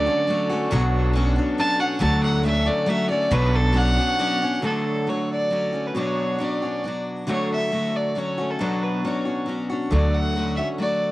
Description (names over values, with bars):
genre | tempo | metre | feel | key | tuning
rock | 136 BPM | 3/4 | straight | D major | A4 = 441 Hz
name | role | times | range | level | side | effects
clear fiddle | melody | 0.0-11.1 s | A4 to A5 | -25 LUFS | equal | cassette tape
picked steel-string acoustic guitar | accompaniment | 0.0-11.1 s | B2 to F#4 | -25 LUFS | left 1 dB | cassette tape
clear symphonic string section | sustained chords | 0.0-4.6 s | A3 to A4 | -34 LUFS | equal | none
electric guitar through a small old amp | riff | 0.0-11.1 s | B2 to C#5 | -28 LUFS | right 1 dB | analog chorus, cassette tape
upright bass | bass | 0.0-4.0, 9.9-10.6 s | B1 to D2 | -22 LUFS | equal | none
room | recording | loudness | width
small room ambience | home recording on cassette | -20 LUFS | side -17 dB against mid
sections
0.0-4.6 A section; 4.6-11.1 B section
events
fiddle solo 0.0-4.6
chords
0.0 Dmaj7; 0.7 Bmadd9; 2.0 Dmaj7; 3.3 Bmadd9; 4.6 Dmaj7; 6.0 Bmadd9; 7.3 Dmaj7; 8.6 Bmadd9; 9.9 Dmaj7